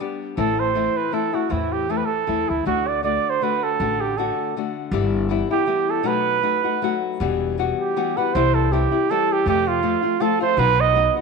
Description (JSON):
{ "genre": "mexican folk, mariachi", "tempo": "159 BPM", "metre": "3/4", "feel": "swing 55% on 8ths, rubato", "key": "E harmonic minor from 7.2 s", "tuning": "A4 = 440 Hz", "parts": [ { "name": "nylon-string guitar", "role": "accompaniment", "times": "0.0-11.2 s", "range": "E2 to G4", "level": "-23 LUFS", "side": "left 11 dB", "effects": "none" }, { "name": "clear trumpet", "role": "melody", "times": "0.4-11.2 s", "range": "E4 to D#5", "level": "-21 LUFS", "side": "right 9 dB", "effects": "none" }, { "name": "upright bass", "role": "bass", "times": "0.4-11.1 s", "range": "E1 to F2", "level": "-25 LUFS", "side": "equal", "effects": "none" } ], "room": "moderate echo chamber reverb, RT60 1.4 s, studio ambience", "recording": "1960s-style stereo with parts hard left and right", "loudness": "-19 LUFS", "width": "side -4 dB against mid", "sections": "0.0-7.2 A section; 7.2-11.2 B section", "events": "none", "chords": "0.4 Am; 2.7 D; 4.9 G6; 6.0 B7; 7.2 Emadd9; 8.3 C; 9.5 F; 10.6 B" }